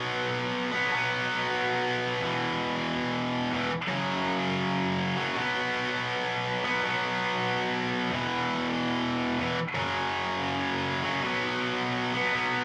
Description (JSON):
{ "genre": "punk", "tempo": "163 BPM", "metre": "4/4", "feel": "straight", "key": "unclear", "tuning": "A4 = 439 Hz", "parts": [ { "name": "tight distorted guitar", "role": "solo", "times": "0.0-12.6 s", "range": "E2 to B3", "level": "-28 LUFS", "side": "equal", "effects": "distortion, slapback echo" } ], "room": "light reverb", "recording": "live gig heard through the venue's PA, club ambience, lossy compression artefacts", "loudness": "-28 LUFS", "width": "mono", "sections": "0.0-11.2 A section; 11.2-12.6 B section", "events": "none", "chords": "0.0 B5; 2.2 E5; 3.9 F#5; 5.4 B5; 8.1 E5; 9.8 F#5; 11.2 B5", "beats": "0.18 0.56 | 0.93 1.30 1.67 2.04 | 2.41 2.78 3.15 3.52 | 3.89 4.26 4.63 4.99 | 5.36 5.73 6.10 6.46 | 6.83 7.20 7.57 7.93 | 8.30 8.66 9.03 9.40 | 9.76 10.13 10.49 10.86 | 11.23 11.59 11.96 12.32" }